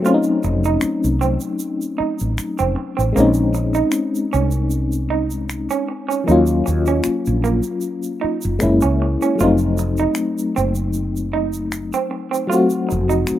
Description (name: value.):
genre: R&B, neo-soul.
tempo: 77 BPM.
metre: 4/4.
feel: swing 54% on 16ths.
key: unclear.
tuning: A4 = 440 Hz.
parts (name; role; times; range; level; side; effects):
FM electric piano with tremolo; accompaniment; 0.0-13.4 s; F3 to Gb4; -19 LUFS; left 3 dB; none.
electric guitar through a small old amp; second line; 0.1-13.2 s; Bb3 to F4; -23 LUFS; right 7 dB; spring reverb.
tube shaker and finger snaps; percussion; 0.1-13.4 s; none; -31 LUFS; right 1 dB; none.
woody fretless electric bass; bass; 0.4-13.3 s; F1 to Eb2; -20 LUFS; equal; lush chorus.
room: light reverb.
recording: rough home demo mix.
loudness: -17 LUFS.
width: side -12 dB against mid.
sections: 0.0-13.4 A section.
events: none.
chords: 0.0 F7b9; 3.1 Bbm11; 6.3 Ebm9; 8.6 Gb9; 9.4 F7b9.